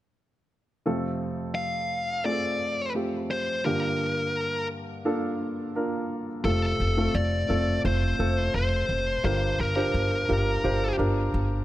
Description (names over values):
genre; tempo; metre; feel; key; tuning
pop; 86 BPM; 4/4; straight; F major; A4 = 440 Hz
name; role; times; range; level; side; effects
warm baby grand piano; accompaniment; 0.9-11.6 s; F2 to C5; -28 LUFS; right 1 dB; none
high-gain lead guitar; melody; 1.5-11.0 s; A4 to F5; -28 LUFS; left 1 dB; distortion
upright bass; bass; 6.4-11.6 s; F1 to G1; -26 LUFS; equal; none
room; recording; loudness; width
light reverb, small room ambience; none; -24 LUFS; side -14 dB against mid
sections
0.9-6.4 A section; 6.4-11.6 B section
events
none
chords
0.9 F; 3.7 Gm7; 6.4 F; 9.2 Gm7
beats
| 0.86 1.56 2.26 2.96 | 3.65 4.35 5.05 5.75 | 6.44 7.14 7.84 8.54 | 9.23 9.93 10.63 11.33